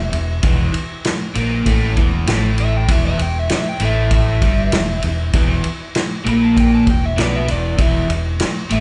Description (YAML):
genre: blues rock power trio and southern rock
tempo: 98 BPM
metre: 4/4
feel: straight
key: E minor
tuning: A4 = 439 Hz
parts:
  - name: overdriven slide guitar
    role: melody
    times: 0.0-8.8 s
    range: D5 to B5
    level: -28 LUFS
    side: equal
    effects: none
  - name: crunchy overdriven guitar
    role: riff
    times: 0.0-8.8 s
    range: E2 to B3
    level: -22 LUFS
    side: equal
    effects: spring reverb
  - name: overdriven fingered electric bass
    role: bass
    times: 0.0-8.8 s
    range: E1 to B1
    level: -22 LUFS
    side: equal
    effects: none
  - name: vintage drum kit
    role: drums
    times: 0.1-8.8 s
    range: kick drum, ride cymbal, snare drum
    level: -21 LUFS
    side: equal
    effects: none
room: moderate large studio reverb, RT60 1.3 s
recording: band playing live in one room, nothing above 10.4 kHz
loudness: -17 LUFS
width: mono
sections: 0.0-8.8 A section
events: electric slide guitar solo 0.0-8.8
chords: none